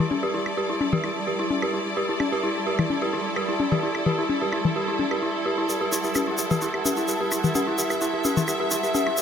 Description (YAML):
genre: minimal techno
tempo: 129 BPM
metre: 4/4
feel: straight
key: E minor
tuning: A4 = 440 Hz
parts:
  - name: dark detuned synth bell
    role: riff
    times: 0.0-9.2 s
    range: E4 to G4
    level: -27 LUFS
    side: equal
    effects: chorus, low-pass filter, ping-pong delay
  - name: congas and woodblock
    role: percussion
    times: 0.0-9.2 s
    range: none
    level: -26 LUFS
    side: left 4 dB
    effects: none
  - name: clear studio string section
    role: texture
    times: 0.0-9.2 s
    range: E4 to E5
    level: -27 LUFS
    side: equal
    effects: none
  - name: pulsing gated texture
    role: texture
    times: 0.1-9.2 s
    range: G3 to F#5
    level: -34 LUFS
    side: right 3 dB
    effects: chorus, built-in reverb
  - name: egg shaker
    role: percussion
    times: 5.7-9.2 s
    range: none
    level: -29 LUFS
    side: left 2 dB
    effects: none
room: moderate digital room reverb, RT60 1.4 s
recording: none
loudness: -22 LUFS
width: side -8 dB against mid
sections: 0.0-9.2 A section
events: none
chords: 0.0 Em